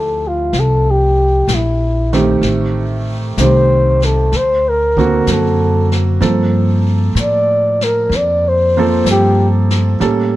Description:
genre	jazz ballad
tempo	63 BPM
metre	4/4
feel	swing 68% on 8ths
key	unclear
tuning	A4 = 440 Hz
part	breathy flugelhorn	melody	0.0-9.5 s	E4 to D5	-15 LUFS	left 1 dB	none
part	warm concert grand piano	accompaniment	0.0-10.4 s	D3 to A4	-18 LUFS	right 4 dB	none
part	upright bass	bass	0.0-10.4 s	A1 to A2	-16 LUFS	equal	none
part	jazz brush drum kit	drums	0.5-10.4 s	brushed snare drum, hi-hat, kick drum, snare drum	-24 LUFS	left 2 dB	none
room	small room ambience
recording	none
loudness	-11 LUFS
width	side -15 dB against mid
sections	0.0-10.4 A section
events	flugelhorn solo 0.0-10.4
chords	0.0 Fmaj9; 2.4 Am7b5; 4.3 D7b13; 6.2 Gm11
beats	0.53 1.48 | 2.43 3.37 4.32 5.26 | 6.21 7.15 8.10 9.05 | 10.00

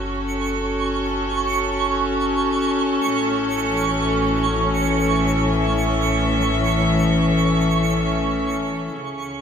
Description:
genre	ambient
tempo	free time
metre	none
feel	none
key	unclear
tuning	A4 = 440 Hz
part	rich chamber string section	sustained chords	0.0-9.4 s	A2 to E5	-19 LUFS	left 1 dB	none
part	warm sub bass	bass	0.0-9.4 s	F#1 to C#2	-29 LUFS	equal	tube saturation
part	twinkling granular texture	texture	0.0-9.4 s	B5 to C#6	-25 LUFS	right 6 dB	built-in reverb
room	wet concert hall reverb, RT60 2.2 s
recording	none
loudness	-18 LUFS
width	side -7 dB against mid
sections	0.0-8.9 A section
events	none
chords	0.0 F#m; 3.0 A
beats	free time

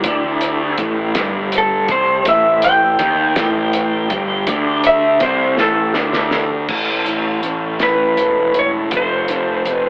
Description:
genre	psychedelic rock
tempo	54 BPM (dotted quarters)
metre	6/8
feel	straight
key	unclear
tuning	A4 = 440 Hz
part	electric slide guitar	melody	0.0-9.9 s	E4 to G5	-19 LUFS	equal	analog delay
part	combo organ	sustained chords	0.0-9.9 s	E3 to A4	-31 LUFS	equal	none
part	electric guitar through a small old amp	riff	0.0-9.9 s	G2 to D#4	-24 LUFS	equal	rotary speaker
part	fuzz picked electric bass	bass	0.0-9.9 s	E1 to D#2	-24 LUFS	equal	overdrive
part	cloth-damped thuddy drum kit	drums	0.0-9.8 s	crash cymbal, hi-hat, kick drum, snare drum	-24 LUFS	equal	none
part	congas	percussion	0.0-9.6 s	none	-39 LUFS	equal	none
room	light reverb, studio reverb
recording	echo-heavy mix, telephone sound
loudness	-16 LUFS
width	mono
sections	0.0-6.7 A section; 6.7-9.9 B section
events	electric slide guitar solo 0.0-6.7; drum fill 5.6-6.7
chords	0.0 A5; 6.7 A; 8.9 F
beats	| 0.04 1.14 | 2.25 3.36 | 4.46 5.58 | 6.69 7.80 | 8.91

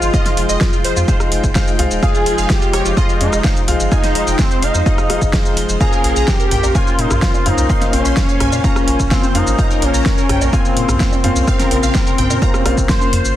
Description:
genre	progressive house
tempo	127 BPM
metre	4/4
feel	straight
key	unclear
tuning	A4 = 439 Hz
part	expressive synth lead	melody	0.0-13.4 s	C4 to C5	-20 LUFS	left 1 dB	ensemble chorus, sidechain pumping, tape echo
part	lush unison pad	sustained chords	0.0-13.3 s	Db3 to G5	-27 LUFS	equal	chorus, sidechain pumping
part	wide unison pluck	arpeggios	0.0-13.3 s	F4 to C6	-25 LUFS	right 1 dB	phaser, sidechain pumping, tape echo
part	warm grand piano	stabs	0.0-13.3 s	Db3 to F5	-22 LUFS	left 2 dB	sidechain pumping, tape echo
part	round analog bass	bass	0.0-13.3 s	Eb1 to Bb2	-19 LUFS	equal	sidechain pumping
part	deep house drum kit	drums	0.0-13.3 s	hi-hat, rim click, shaker, snare drum	-22 LUFS	equal	small room ambience
part	electronic kick drum	drums	0.1-13.0 s	none	-17 LUFS	equal	small room ambience
part	electronic toms, bongos and congas	percussion	6.5-13.1 s	none	-24 LUFS	left 1 dB	overdrive, sidechain pumping on perc, small room ambience, sidechain pumping on toms
room	light reverb, digital ambience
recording	dense, heavily limited modern master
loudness	-12 LUFS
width	side -12 dB against mid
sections	0.0-13.4 A section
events	drop 0.0-13.4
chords	0.0 Fm7; 5.8 Bbmadd9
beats	| 0.14 0.61 1.08 1.55 | 2.03 2.50 2.97 3.44 | 3.92 4.39 4.86 5.33 | 5.81 6.28 6.75 7.22 | 7.70 8.17 8.64 9.11 | 9.59 10.06 10.53 11.00 | 11.47 11.95 12.42 12.89

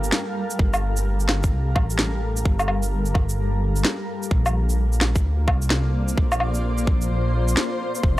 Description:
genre	future garage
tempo	129 BPM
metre	4/4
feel	swing 63% on 16ths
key	unclear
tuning	A4 = 440 Hz
part	granular cloud pad	sustained chords	0.0-8.2 s	G3 to F5	-28 LUFS	equal	built-in reverb, sidechain pumping
part	dark detuned saw bass	bass	0.0-8.2 s	F1 to D2	-22 LUFS	equal	tube saturation
part	electronic shaker, snare drum and woodblock	drums	0.0-8.0 s	none	-24 LUFS	equal	none
part	electronic kick drum	drums	0.6-8.2 s	none	-21 LUFS	equal	overdrive
room	little or no reverb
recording	dry, gritty hardware recording, transformer saturation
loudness	-20 LUFS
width	side -16 dB against mid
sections	0.0-8.2 A section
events	none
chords	0.0 Gm7; 4.3 Bbmaj7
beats	0.12 | 0.59 1.06 1.52 1.99 | 2.45 2.92 3.38 3.85 | 4.31 4.78 5.24 5.71 | 6.17 6.64 7.10 7.57 | 8.03

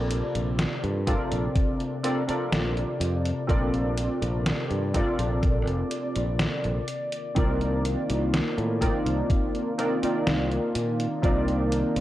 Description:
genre	vaporwave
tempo	62 BPM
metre	4/4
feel	straight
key	Bb major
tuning	A4 = 441 Hz
part	warbly lo-fi synth keys	accompaniment	0.0-12.0 s	C4 to D5	-28 LUFS	equal	analog chorus, analog delay
part	warbly tape-like pad	sustained chords	0.2-12.0 s	C3 to D5	-32 LUFS	equal	chorus, built-in reverb
part	modern bright fingered electric bass	bass	0.0-12.0 s	F1 to Bb2	-28 LUFS	equal	none
part	detuned 8-bit digital drum machine	drums	0.1-12.0 s	hi-hat, snare drum	-31 LUFS	equal	none
part	electronic kick drum	drums	1.1-11.4 s	none	-25 LUFS	equal	none
room	digital ambience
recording	cassette tape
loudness	-23 LUFS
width	side -14 dB against mid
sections	0.0-12.0 A section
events	none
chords	0.0 Bbmaj9; 6.9 Cm11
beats	0.59 1.56 2.53 | 3.49 4.46 5.43 6.40 | 7.37 8.33 9.30 10.27 | 11.24

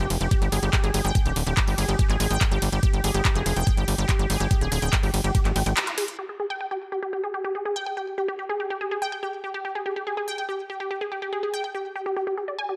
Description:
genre	psychedelic trance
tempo	143 BPM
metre	4/4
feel	straight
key	unclear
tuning	A4 = 438 Hz
part	unison pluck	riff	0.0-12.7 s	F4 to Ab5	-30 LUFS	equal	sidechain pumping, digital delay
part	tight sequencer bass	bass	0.0-5.7 s	D1 to Ab1	-27 LUFS	equal	tube saturation
part	big-room dance drum kit	drums	0.0-6.3 s	crash cymbal, handclaps, hi-hat, ride cymbal	-31 LUFS	equal	low-pass filter on hats, low-pass filter on snare, low-pass filter on cymbals, low-pass filter on room
part	electronic kick drum	drums	0.3-5.4 s	none	-24 LUFS	equal	none
room	light reverb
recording	none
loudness	-25 LUFS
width	mono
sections	0.0-6.2 A section; 6.2-12.8 B section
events	drop 0.0-6.2; band accent 5.8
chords	0.0 G5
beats	0.31 0.73 | 1.15 1.57 1.99 2.41 | 2.83 3.25 3.67 4.09 | 4.51 4.93 5.35 5.77 | 6.19 6.61 7.03 7.45 | 7.87 8.28 8.70 9.12 | 9.54 9.96 10.38 10.80 | 11.22 11.64 12.06 12.48

